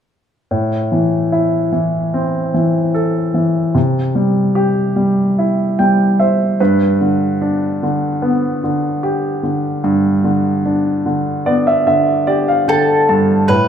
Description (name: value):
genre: pop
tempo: 74 BPM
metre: 4/4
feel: straight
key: unclear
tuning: A4 = 441 Hz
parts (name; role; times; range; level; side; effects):
- clear baby grand piano; accompaniment; 0.5-13.7 s; G2 to A5; -13 LUFS; equal; none
- mandolin; melody; 12.7-13.7 s; A4 to B4; -13 LUFS; left 2 dB; none
room: moderate large studio reverb, RT60 0.9 s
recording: band playing live in one room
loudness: -13 LUFS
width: side -8 dB against mid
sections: 0.5-13.5 A section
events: grand piano fill 5.4-7.0, 11.1-13.5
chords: 0.5 Am; 3.8 C; 6.6 G